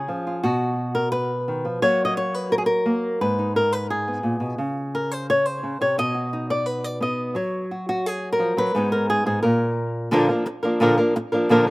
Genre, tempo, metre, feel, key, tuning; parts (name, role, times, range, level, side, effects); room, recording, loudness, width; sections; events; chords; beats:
flamenco; 173 BPM; 4/4; straight; A4 = 440 Hz
flamenco guitar; solo; 0.0-11.7 s; Ab2 to Eb5; -20 LUFS; equal
little or no reverb; recorded outdoors, with no room sound; -20 LUFS; side -21 dB against mid
0.0-10.1 A section; 10.1-11.7 B section
0.4 B; 1.8 Gb; 3.2 Abm; 4.6 Bbmadd9; 6.0 B; 7.4 Gb; 8.7 Abm; 9.4 N.C.; 10.1 Bb
0.09 | 0.44 0.78 1.13 1.48 | 1.82 2.17 2.52 2.86 | 3.21 3.55 3.90 4.25 | 4.59 4.94 5.29 5.63 | 5.98 6.32 6.67 7.01 | 7.36 7.71 8.05 8.40 | 8.74 9.09 9.44 9.78 | 10.12 10.47 10.81 11.16 | 11.50